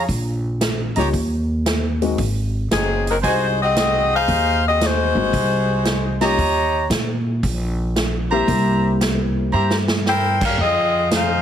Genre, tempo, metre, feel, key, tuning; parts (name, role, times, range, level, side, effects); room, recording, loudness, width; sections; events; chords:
jazz, big band swing; 114 BPM; 4/4; swing 68% on 8ths; Eb mixolydian; A4 = 440 Hz
clear trumpet section; stabs; 0.0-9.8 s; Gb4 to Bb5; -20 LUFS; right 2 dB
upright bass; bass; 0.0-11.4 s; Gb1 to Bb2; -21 LUFS; right 1 dB
swinging big-band drum kit; drums; 0.1-11.3 s; crash cymbal, hi-hat, kick drum, snare drum; -24 LUFS; right 1 dB
dark grand piano; accompaniment; 1.0-10.0 s; G3 to G4; -23 LUFS; left 5 dB
warm saxophone section; melody; 2.7-6.2, 10.1-11.4 s; Gb3 to G5; -18 LUFS; left 2 dB
light reverb; heavily compressed radio sound, multiband compression; -17 LUFS; side -9 dB against mid
0.0-11.4 A section
drum fill 9.5-10.1
0.1 Bbm; 1.1 Eb5; 2.2 Ab7; 6.4 Eb7; 8.5 C7; 10.6 Fm7